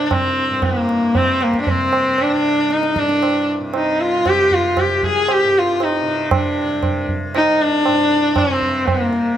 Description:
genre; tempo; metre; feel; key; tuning
indian classical, Hindustani; 116 BPM; 4/4; straight; C raga darbari; A4 = 443 Hz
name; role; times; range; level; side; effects
rich sarangi; melody; 0.0-9.4 s; Bb3 to Ab4; -16 LUFS; equal; none
tanpura; drone; 0.0-9.4 s; C2 to C3; -28 LUFS; left 1 dB; none
tabla; percussion; 0.1-9.3 s; none; -22 LUFS; right 4 dB; none
room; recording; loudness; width
light reverb; close, detailed microphones; -15 LUFS; side -10 dB against mid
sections
0.0-9.4 A section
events
none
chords
none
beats
| 0.12 0.64 1.16 1.68 | 2.19 2.71 3.23 3.75 | 4.26 4.78 5.29 5.81 | 6.32 6.83 7.35 7.86 | 8.37 8.88

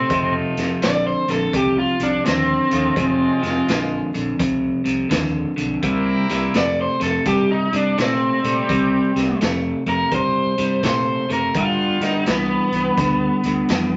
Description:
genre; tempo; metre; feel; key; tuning
electric blues shuffle; 84 BPM; 4/4; swing 64% on 8ths; unclear; A4 = 444 Hz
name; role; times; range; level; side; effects
raw garage guitar; melody; 0.0-14.0 s; B3 to D5; -22 LUFS; equal; overdrive
electric guitar at the edge of break-up; riff; 0.0-14.0 s; F2 to A3; -24 LUFS; equal; none
vintage muted fingered electric bass; bass; 0.0-14.0 s; F1 to Bb2; -32 LUFS; equal; none
warm horn section; stabs; 0.1-12.4 s; G3 to Eb5; -29 LUFS; equal; none
raw garage drum kit; drums; 0.1-13.9 s; hi-hat, kick drum, snare drum; -28 LUFS; equal; none
room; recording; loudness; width
wet studio reverb, RT60 0.6 s; vinyl crackle, nothing above 7.8 kHz; -20 LUFS; mono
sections
0.0-14.0 A section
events
overdriven electric guitar solo 0.0-14.0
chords
0.1 F7; 3.0 Fm7; 5.8 C7; 11.6 G7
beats
| 0.10 0.82 1.54 2.25 | 2.97 3.69 4.40 5.12 | 5.83 6.55 7.26 7.98 | 8.69 9.41 10.12 10.84 | 11.55 12.27 12.98 13.70

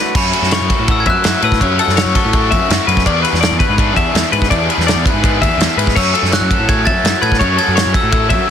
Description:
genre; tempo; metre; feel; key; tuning
math rock and midwest emo; 166 BPM; 4/4; straight; unclear; A4 = 440 Hz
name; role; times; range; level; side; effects
twangy electric guitar; accompaniment; 0.0-1.6 s; D2 to F#4; -33 LUFS; right 10 dB; none
twelve-string electric guitar; arpeggios; 0.0-8.5 s; A4 to E5; -18 LUFS; left 8 dB; analog delay
crunchy overdriven guitar; riff; 0.0-8.5 s; D3 to G#4; -20 LUFS; right 3 dB; none
fuzz picked electric bass; bass; 0.1-8.4 s; E2 to A2; -18 LUFS; equal; overdrive
loose indie drum kit; drums; 0.1-8.4 s; crash cymbal, kick drum, ride cymbal, snare drum; -15 LUFS; equal; none
glockenspiel with hard plastic mallets; melody; 0.2-2.7, 6.0-8.5 s; B5 to A6; -19 LUFS; left 2 dB; none
room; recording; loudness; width
little or no reverb; dense, heavily limited modern master; -11 LUFS; side -8 dB against mid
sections
0.1-8.5 A section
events
none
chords
0.1 F#m7; 3.1 E7; 6.0 F#m9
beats
| 0.14 0.50 0.87 1.23 | 1.60 1.96 2.33 2.69 | 3.05 3.42 3.78 4.14 | 4.50 4.87 5.23 5.59 | 5.95 6.31 6.67 7.04 | 7.40 7.76 8.12 8.48

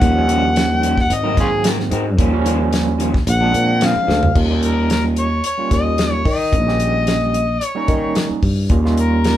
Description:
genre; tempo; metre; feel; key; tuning
straight-eighth soul blues; 111 BPM; 4/4; swing 54% on 16ths; Eb mixolydian; A4 = 440 Hz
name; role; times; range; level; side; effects
overdriven harmonica; melody; 0.0-9.4 s; Db4 to Gb5; -20 LUFS; left 2 dB; none
overdriven tine electric piano; accompaniment; 0.0-9.4 s; Eb3 to G4; -23 LUFS; right 6 dB; fast tremolo
electric guitar through a small old amp; stabs; 0.0-4.3 s; Bb2 to Bb4; -25 LUFS; left 3 dB; none
sustaining fretless electric bass; bass; 0.0-9.4 s; Ab1 to Eb3; -18 LUFS; equal; none
warm soul drum kit; drums; 0.0-9.4 s; crash cymbal, hi-hat, kick drum, snare drum, toms; -20 LUFS; equal; none
room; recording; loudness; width
moderate studio reverb, RT60 0.6 s; band playing live in one room; -14 LUFS; side -12 dB against mid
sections
0.0-4.4 A section; 4.4-9.4 B section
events
harmonica solo 0.0-4.4; drum fill 4.1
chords
0.0 Eb9; 1.1 Ab9; 2.2 Eb9; 3.3 Bb9; 4.4 Eb9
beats
| 0.02 0.56 1.10 1.64 | 2.19 2.73 3.27 3.81 | 4.36 4.90 5.44 5.99 | 6.53 7.07 7.61 8.16 | 8.70 9.24

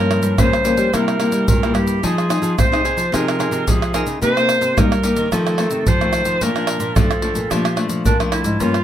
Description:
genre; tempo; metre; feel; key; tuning
samba and choro; 110 BPM; 4/4; straight; unclear; A4 = 439 Hz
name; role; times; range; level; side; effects
clear clarinet; second line; 0.0-8.8 s; D4 to C5; -20 LUFS; right 2 dB; none
nylon-string guitar; accompaniment; 0.0-8.8 s; F2 to Ab4; -21 LUFS; left 3 dB; none
nylon-string guitar; bass; 0.0-8.8 s; G2 to Bb3; -22 LUFS; equal; none
pandeiro, tamborim, egg shaker and surdo; percussion; 0.1-8.8 s; none; -20 LUFS; right 1 dB; none
room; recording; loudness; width
moderate small room reverb, RT60 0.5 s; none; -15 LUFS; side -10 dB against mid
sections
0.0-8.8 A section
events
none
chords
0.0 Gm7b5; 0.9 C7; 2.0 Fm7; 4.2 Cm7; 5.3 F7; 6.4 Bbmaj7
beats
0.39 0.94 1.48 | 2.03 2.58 3.13 3.67 | 4.22 4.77 5.32 5.86 | 6.41 6.96 7.50 8.05 | 8.60

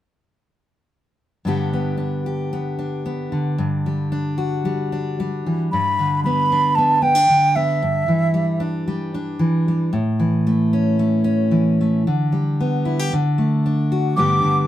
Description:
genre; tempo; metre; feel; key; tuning
acoustic folk duo or small band; 113 BPM; 4/4; straight; G major; A4 = 440 Hz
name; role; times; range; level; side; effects
fingerpicked steel-string acoustic guitar; accompaniment; 1.4-14.7 s; G2 to G4; -19 LUFS; equal; none
wooden flute; melody; 5.7-8.6, 14.2-14.7 s; E5 to D6; -17 LUFS; right 1 dB; none
room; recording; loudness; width
moderate studio reverb, RT60 0.5 s; band playing live in one room; -17 LUFS; side -12 dB against mid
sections
1.5-5.7 A section; 5.7-14.7 B section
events
none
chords
1.5 G; 3.6 Em9/G (rootless); 5.7 G; 7.8 Em7/G; 9.9 A; 12.1 G/D; 13.1 D; 14.2 G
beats
| 1.47 2.00 2.52 3.06 | 3.58 4.11 4.64 5.17 | 5.70 6.23 6.76 7.29 | 7.82 8.35 8.88 9.41 | 9.94 10.47 10.99 11.52 | 12.05 12.58 13.11 13.64 | 14.17

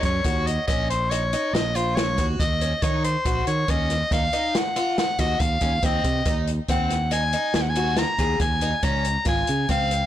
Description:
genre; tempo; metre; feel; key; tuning
progressive instrumental, band music in an uneven meter; 140 BPM; 7/4; straight; Eb dorian; A4 = 439 Hz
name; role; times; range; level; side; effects
edgy soprano saxophone; melody; 0.0-10.1 s; C5 to Bb5; -25 LUFS; left 1 dB; none
picked twelve-string acoustic guitar; arpeggios; 0.0-9.9 s; C4 to Ab4; -29 LUFS; left 1 dB; none
fingered electric bass; bass; 0.0-10.0 s; Ab1 to Eb3; -26 LUFS; right 1 dB; transformer saturation
open jazz drum kit; drums; 0.0-10.0 s; hi-hat, kick drum, snare drum; -26 LUFS; equal; none
room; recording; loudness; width
light reverb; blown-out, overdriven recording, overdrive; -20 LUFS; side -12 dB against mid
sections
0.0-10.1 A section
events
none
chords
0.0 Ebm7; 5.8 Ab/Eb; 8.8 Db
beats
0.25 0.68 1.11 1.54 1.97 2.40 | 2.83 3.26 3.69 4.12 4.54 4.97 5.40 | 5.83 6.26 6.69 7.12 7.55 7.98 8.41 | 8.84 9.27 9.69

